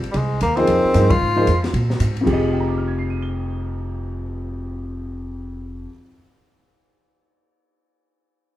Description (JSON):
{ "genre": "modal jazz", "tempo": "226 BPM", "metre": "4/4", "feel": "swing 61% on 8ths", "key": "F dorian", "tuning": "A4 = 441 Hz", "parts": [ { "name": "upright bass", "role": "bass", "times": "0.0-5.8 s", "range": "F1 to Bb2", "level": "-23 LUFS", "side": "equal", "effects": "none" }, { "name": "open jazz drum kit", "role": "drums", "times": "0.0-4.3 s", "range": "crash cymbal, cymbal swell, hi-hat, kick drum, ride cymbal, snare drum", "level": "-28 LUFS", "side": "left 1 dB", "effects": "none" }, { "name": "clear tenor saxophone", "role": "melody", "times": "0.1-1.6 s", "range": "G3 to F4", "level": "-20 LUFS", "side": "left 1 dB", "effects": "none" }, { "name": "clear grand piano", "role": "accompaniment", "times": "0.6-6.2 s", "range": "F2 to G7", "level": "-22 LUFS", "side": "equal", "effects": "none" } ], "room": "moderate large studio reverb, RT60 1.1 s", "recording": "band playing live in one room", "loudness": "-18 LUFS", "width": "side -14 dB against mid", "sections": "0.0-2.3 A section; 2.3-4.4 B section", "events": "band accent 1.1", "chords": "0.0 Fm7; 2.3 Fm9" }